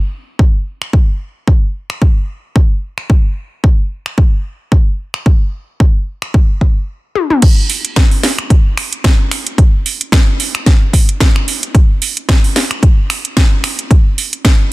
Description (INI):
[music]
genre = nu-disco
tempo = 111 BPM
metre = 4/4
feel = swing 55% on 16ths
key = none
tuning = none
[part]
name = electronic kick drum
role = drums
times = 0.4-14.6 s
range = none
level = -9 LUFS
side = equal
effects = none
[part]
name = house drum kit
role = drums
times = 0.8-14.6 s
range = crash cymbal, finger snaps, hi-hat, snare drum, toms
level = -16 LUFS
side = equal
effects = none
[sound]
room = little or no reverb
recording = dense, heavily limited modern master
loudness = -11 LUFS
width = side -20 dB against mid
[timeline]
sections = 0.0-7.4 A section; 7.4-14.7 B section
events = stop 6.9-7.4; drum fill 7.2; drop 7.4-14.7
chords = none